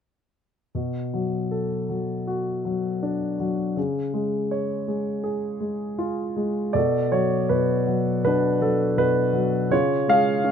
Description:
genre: classical, lyrical solo piano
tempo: 80 BPM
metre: 4/4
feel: rubato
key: B minor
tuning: A4 = 441 Hz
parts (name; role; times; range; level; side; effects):
- warm baby grand piano; solo; 0.7-10.5 s; B2 to E#5; -21 LUFS; equal; none
room: light reverb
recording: dark, warm production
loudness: -22 LUFS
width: side -7 dB against mid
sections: 0.7-6.8 A section; 6.8-10.5 B section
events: none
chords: 0.7 Bm7; 3.8 C#; 6.8 Bm7; 9.7 C#

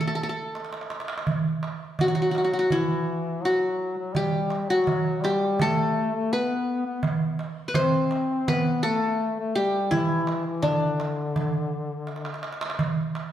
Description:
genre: Turkish makam ensemble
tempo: 83 BPM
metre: 4/4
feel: straight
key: G makam rast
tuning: A4 = 442 Hz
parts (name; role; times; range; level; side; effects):
- qanun; melody; 0.0-12.4 s; D4 to C5; -25 LUFS; left 1 dB; none
- mellow duduk; second line; 0.0-12.5 s; D3 to C4; -28 LUFS; left 3 dB; none
- darbuka; percussion; 0.6-13.3 s; none; -27 LUFS; right 3 dB; none
room: wet stone room reverb, RT60 1.4 s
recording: band playing live in one room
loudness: -23 LUFS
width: side -11 dB against mid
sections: 0.0-1.3 A section; 1.3-13.3 B section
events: drum fill 0.5-1.3, 12.1-12.8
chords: none

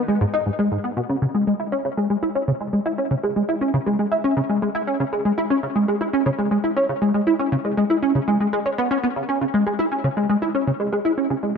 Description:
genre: ambient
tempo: 119 BPM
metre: 4/4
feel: straight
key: unclear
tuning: A4 = 439 Hz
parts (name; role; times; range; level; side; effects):
- plucky analog bass; solo; 0.0-11.5 s; G#2 to E4; -19 LUFS; equal; ensemble chorus, ping-pong delay
room: moderate plate reverb, RT60 2.7 s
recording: none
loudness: -19 LUFS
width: side -6 dB against mid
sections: 0.0-11.6 A section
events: none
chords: none

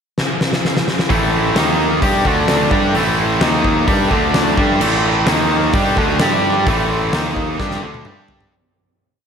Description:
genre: hard rock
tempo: 129 BPM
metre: 4/4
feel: straight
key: A minor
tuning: A4 = 440 Hz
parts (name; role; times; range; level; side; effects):
- huge arena drum kit; drums; 0.2-8.5 s; crash cymbal, hi-hat, kick drum, snare drum, toms; -18 LUFS; equal; none
- hollow soft pad; sustained chords; 1.1-8.5 s; G4 to D#6; -26 LUFS; equal; chorus
- tight distorted guitar; riff; 1.1-8.5 s; A2 to G4; -19 LUFS; left 8 dB; distortion, slapback echo
- tight distorted guitar; riff; 1.1-8.5 s; A2 to G4; -19 LUFS; right 8 dB; distortion, slapback echo
- fuzz fingered electric bass; bass; 1.1-8.5 s; A1 to G2; -21 LUFS; equal; overdrive
room: moderate lush hall reverb, RT60 1.7 s, studio ambience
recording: big arena sound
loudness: -13 LUFS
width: side -7 dB against mid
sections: 0.0-1.1 pickup bar; 1.1-8.5 riff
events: drum fill 0.2-1.1, 7.6-8.5; fade-out 6.7-8.5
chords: 0.0 N.C.; 1.1 Am; 1.6 D#5; 2.0 Am; 2.3 D5; 2.7 Am; 3.4 D#5; 3.9 Am; 4.1 D5; 4.6 Am; 5.3 D#5; 5.7 Am; 6.2 G5; 6.7 Am; 7.1 D#5; 7.6 Am; 8.1 G5

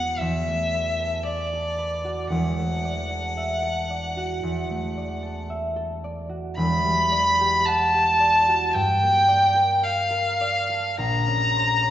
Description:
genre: classical, impressionist duo for violin and harp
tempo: 56 BPM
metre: 4/4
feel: rubato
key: unclear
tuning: A4 = 441 Hz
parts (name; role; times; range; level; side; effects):
- rich violin; melody; 0.0-11.9 s; D5 to B5; -21 LUFS; equal; none
- concert harp; accompaniment; 0.0-11.9 s; E1 to F#5; -27 LUFS; right 1 dB; none
room: wet scoring stage reverb, RT60 1.7 s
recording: recorded in a church or concert hall, nothing above 7.9 kHz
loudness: -20 LUFS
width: side -11 dB against mid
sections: 0.0-11.9 A section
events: none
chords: 0.2 Bm7/E; 2.3 Dadd9/E; 6.6 Em9; 8.7 Gm9; 11.0 A#madd9

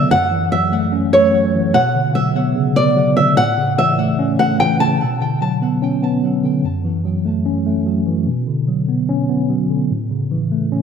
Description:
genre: hip hop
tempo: 147 BPM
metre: 4/4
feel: half-time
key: B minor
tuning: A4 = 440 Hz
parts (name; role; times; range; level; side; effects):
- flamenco guitar; melody; 0.0-5.0 s; C#5 to A5; -16 LUFS; equal; ping-pong delay
- mellow tine electric piano; accompaniment; 0.0-10.8 s; F#2 to C#4; -16 LUFS; equal; medium stereo tremolo, low-pass filter
room: wet lush hall reverb, RT60 2.5 s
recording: dreamy mix soaked in reverb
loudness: -14 LUFS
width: side -7 dB against mid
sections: 0.0-5.0 A section; 5.0-10.8 B section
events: filter sweep on tine electric piano 5.0-10.8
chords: 0.1 F#m7; 1.7 Bmadd9; 3.4 A; 5.0 Bmadd9; 6.6 F#m7; 8.3 Bmadd9; 9.9 A

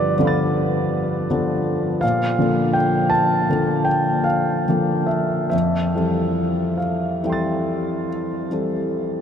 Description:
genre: classical, impressionist solo piano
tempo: 45-55 BPM (dotted quarters)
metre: 9/8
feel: rubato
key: F major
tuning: A4 = 441 Hz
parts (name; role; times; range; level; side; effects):
- clear concert grand piano; solo; 0.0-9.2 s; F2 to A6; -18 LUFS; equal; none
room: wet huge ambient reverb, RT60 7.4 s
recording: in a vast, echoing space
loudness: -18 LUFS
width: side -8 dB against mid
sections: 0.0-9.2 A section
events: none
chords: 0.0 G9; 2.0 Bbmaj7; 5.5 Fmaj9

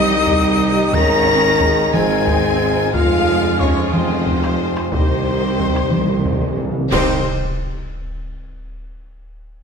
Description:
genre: cinematic, epic orchestral film score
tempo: 60 BPM (dotted quarters)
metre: 6/8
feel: straight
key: C phrygian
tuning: A4 = 440 Hz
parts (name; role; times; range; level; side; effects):
- warm studio violin section; melody; 0.0-7.3 s; C5 to Bb5; -27 LUFS; left 4 dB; none
- bright silver concert flute; second line; 0.0-7.3 s; C6 to Bb6; -24 LUFS; left 3 dB; none
- warm symphonic violin section; second line; 0.0-7.3 s; C5 to Bb5; -25 LUFS; left 4 dB; none
- warm symphonic viola section; accompaniment; 0.0-7.3 s; Eb4 to Ab4; -27 LUFS; right 1 dB; none
- bright trombone section; sustained chords; 0.0-7.2 s; Eb3 to Eb4; -25 LUFS; right 3 dB; none
- mellow French horn section; sustained chords; 0.0-7.2 s; C4 to Bb4; -21 LUFS; left 4 dB; none
- rich symphonic cello section; bass; 0.0-7.3 s; Eb3 to Db4; -24 LUFS; right 4 dB; none
- rich symphonic double bass section; bass; 0.0-7.3 s; Ab1 to F2; -24 LUFS; right 4 dB; none
- warm tuba; bass; 0.0-7.2 s; F1 to C2; -25 LUFS; right 4 dB; none
- taiko ensemble; drums; 0.3-6.9 s; none; -22 LUFS; left 1 dB; none
- timpani; percussion; 4.9-7.2 s; C3; -25 LUFS; equal; none
- clash cymbals and concert bass drum; percussion; 6.9-8.2 s; none; -27 LUFS; equal; none
room: wet scoring stage reverb, RT60 1.6 s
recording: none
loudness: -14 LUFS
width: side -6 dB against mid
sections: 0.0-6.9 A section; 6.9-8.9 B section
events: timpani fill 4.9-6.9; band accent 6.9-7.6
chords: 0.0 Cm; 0.9 Ab; 2.9 Fm; 4.9 Cm

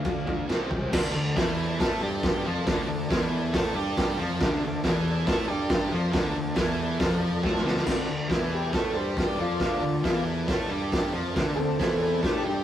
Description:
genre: garage rock duo or trio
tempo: 138 BPM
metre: 4/4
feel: straight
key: D minor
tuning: A4 = 440 Hz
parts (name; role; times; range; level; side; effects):
- overdriven combo organ; sustained chords; 0.0-12.6 s; G4 to A5; -37 LUFS; left 1 dB; none
- thick fuzz guitar; riff; 0.0-12.6 s; C3 to A4; -30 LUFS; equal; distortion
- fuzz picked electric bass; bass; 0.0-12.6 s; C2 to A2; -30 LUFS; equal; overdrive
- raw garage drum kit; drums; 0.0-12.3 s; crash cymbal, hi-hat, kick drum, snare drum; -27 LUFS; equal; none
- overdriven combo organ; melody; 7.9-12.6 s; B3 to D5; -29 LUFS; left 1 dB; phaser
room: light reverb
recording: rough rehearsal-room recording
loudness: -24 LUFS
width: side -11 dB against mid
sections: 0.9-7.9 A section; 7.9-12.6 B section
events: drum fill 7.4-7.9; transistor combo organ solo 7.9-12.6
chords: 0.5 C5; 0.9 Dm

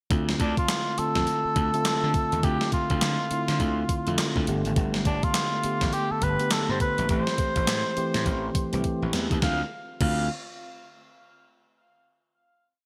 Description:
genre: R&B, new jack swing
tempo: 103 BPM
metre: 4/4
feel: swing 61% on 16ths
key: D dorian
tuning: A4 = 441 Hz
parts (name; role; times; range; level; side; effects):
- mellow tine electric piano; accompaniment; 0.1-10.3 s; D3 to G4; -32 LUFS; equal; none
- gritty slap bass; bass; 0.1-10.3 s; G1 to D3; -31 LUFS; equal; overdrive
- gated 80s digital drum machine; drums; 0.1-10.2 s; crash cymbal, handclaps, hi-hat, kick drum, snare drum; -30 LUFS; equal; gated reverb, gated reverb snare, overdrive
- mellow cor anglais; melody; 0.4-10.3 s; D4 to F5; -31 LUFS; equal; none
room: moderate plate reverb, RT60 2.6 s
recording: bright 1980s-style digital production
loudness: -26 LUFS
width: mono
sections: 0.1-9.4 verse; 9.4-11.8 final chord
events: drum fill 8.8-9.4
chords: 0.1 Dm7; 4.5 Gadd9; 7.1 Am7; 9.4 Dm7

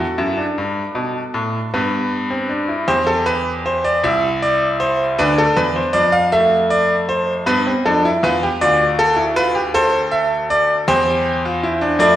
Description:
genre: classical, baroque-style 3-part fugue for grand piano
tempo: 53 BPM (dotted quarters)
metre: 12/8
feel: straight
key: C major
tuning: A4 = 445 Hz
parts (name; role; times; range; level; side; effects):
- bright grand piano; solo; 0.0-12.2 s; C2 to F5; -15 LUFS; equal; none
room: wet recital hall reverb, RT60 1.4 s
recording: recorded in a church or concert hall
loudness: -15 LUFS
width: side -12 dB against mid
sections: 0.0-2.9 A section; 2.9-12.2 B section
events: none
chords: 0.0 D; 0.6 G; 2.9 C/E; 5.2 Dm13; 7.5 G7; 9.7 C

